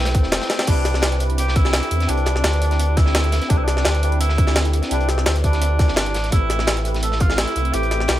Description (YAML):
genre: liquid drum and bass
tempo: 170 BPM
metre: 4/4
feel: straight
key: unclear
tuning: A4 = 439 Hz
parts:
  - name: clear tenor saxophone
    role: melody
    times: 0.0-8.2 s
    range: C4 to A4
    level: -25 LUFS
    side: right 1 dB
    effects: digital delay
  - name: bright tine electric piano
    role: accompaniment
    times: 0.0-8.2 s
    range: A3 to B4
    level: -26 LUFS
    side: equal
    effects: phaser
  - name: dark chamber string section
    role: sustained chords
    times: 0.0-0.6 s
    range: none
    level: barely audible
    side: none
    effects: none
  - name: sub bass with octave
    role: bass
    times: 0.0-8.2 s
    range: E1 to E2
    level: -20 LUFS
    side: equal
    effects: none
  - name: crunchy breakbeat drum kit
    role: drums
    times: 0.1-8.2 s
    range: hi-hat, snare drum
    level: -28 LUFS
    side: equal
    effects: high-pass filter on hats, high-pass filter on snare, high-pass filter on room
  - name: electronic kick drum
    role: drums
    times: 0.1-7.3 s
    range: none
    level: -17 LUFS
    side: equal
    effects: none
  - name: jungle sampler-style drum kit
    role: drums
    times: 0.1-8.2 s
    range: crash cymbal, hi-hat, snare drum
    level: -24 LUFS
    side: equal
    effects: none
room: studio reverb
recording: none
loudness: -16 LUFS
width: side -13 dB against mid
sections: 0.7-8.2 A section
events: drum fill 0.5; drop 0.7-8.2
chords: 0.0 Am9; 0.7 Cmaj9; 6.1 Am9